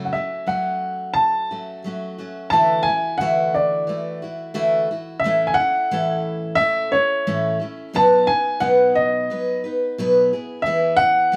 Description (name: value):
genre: rock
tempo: 88 BPM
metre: 4/4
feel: straight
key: unclear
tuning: A4 = 441 Hz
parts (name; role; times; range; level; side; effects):
- picked steel-string acoustic guitar; accompaniment; 0.0-11.4 s; F#2 to B4; -24 LUFS; equal; none
- dark baby grand piano; melody; 0.1-11.4 s; C#5 to A5; -21 LUFS; equal; none
room: light reverb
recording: band playing live in one room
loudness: -20 LUFS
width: mono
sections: 0.0-2.5 A section; 2.5-11.4 B section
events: none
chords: 0.0 F#m; 2.5 Dadd9; 5.2 A; 7.9 B; 10.3 E